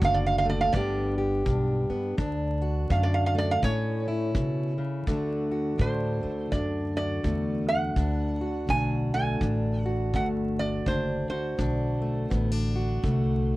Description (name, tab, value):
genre	acoustic country blues, solo or duo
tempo	83 BPM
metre	4/4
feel	swing 61% on 8ths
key	D mixolydian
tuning	A4 = 441 Hz
part	metal-body resonator slide guitar	melody	0.0-13.6 s	C5 to G#5	-29 LUFS	right 3 dB	none
part	fingerpicked plugged-in steel-string acoustic guitar	accompaniment	0.0-13.6 s	D2 to G4	-28 LUFS	left 1 dB	none
part	upright bass	bass	0.0-13.6 s	F#1 to D3	-29 LUFS	equal	none
part	kick drum	drums	0.0-13.2 s	none	-30 LUFS	equal	none
room	little or no reverb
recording	dry, close 1970s-style studio recording, vinyl crackle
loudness	-24 LUFS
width	side -18 dB against mid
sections	0.0-5.1 A section; 5.1-13.6 B section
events	resonator guitar played with a steel bar solo 0.0-5.1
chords	0.0 D; 0.7 G; 2.2 D; 3.6 A; 5.1 D